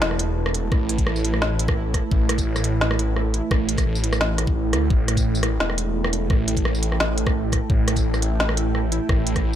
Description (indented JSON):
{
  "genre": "half-time drum and bass",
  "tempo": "172 BPM",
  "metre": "4/4",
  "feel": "half-time",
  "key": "unclear",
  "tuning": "A4 = 439 Hz",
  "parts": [
    { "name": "dark analog pad", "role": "sustained chords", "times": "0.0-9.6 s", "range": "A3 to A5", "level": "-28 LUFS", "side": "right 4 dB", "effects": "chorus, vintage 12-bit sampler grit, sidechain pumping" },
    { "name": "phased detuned saw bass", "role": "bass", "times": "0.0-9.6 s", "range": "E1 to D2", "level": "-23 LUFS", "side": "equal", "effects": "phaser" },
    { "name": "organic electronic drum kit", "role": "drums", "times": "0.0-9.6 s", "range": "hi-hat, rim click, snare drum, tambourine", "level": "-25 LUFS", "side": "equal", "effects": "none" },
    { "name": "pulsing gated texture", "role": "texture", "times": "0.0-9.6 s", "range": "E4", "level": "-33 LUFS", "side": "right 1 dB", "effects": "chorus, built-in reverb" },
    { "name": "electronic kick drum", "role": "drums", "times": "0.7-9.4 s", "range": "none", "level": "-22 LUFS", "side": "left 1 dB", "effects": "none" }
  ],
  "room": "little or no reverb",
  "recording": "none",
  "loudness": "-19 LUFS",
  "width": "side -10 dB against mid",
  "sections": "0.0-9.6 A section",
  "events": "kick drops out 4.6-4.9",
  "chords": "0.0 A5"
}